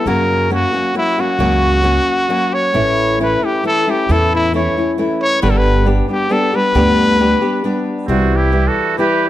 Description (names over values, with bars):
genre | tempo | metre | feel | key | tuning
mexican folk, mariachi | 135 BPM | 3/4 | straight | unclear | A4 = 440 Hz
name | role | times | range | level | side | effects
warm trumpet | melody | 0.0-9.3 s | E4 to C#5 | -16 LUFS | left 1 dB | none
nylon-string guitar | accompaniment | 0.0-9.3 s | F#2 to G4 | -17 LUFS | left 1 dB | none
upright bass | bass | 0.1-8.7 s | G1 to F#2 | -17 LUFS | right 1 dB | none
trumpet with metal mute | second line | 8.1-9.3 s | C4 to G4 | -19 LUFS | right 8 dB | none
room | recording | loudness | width
light reverb | close, detailed microphones | -13 LUFS | side -13 dB against mid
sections
0.0-9.3 A section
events
none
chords
0.1 F#; 2.7 A; 5.4 G; 8.1 C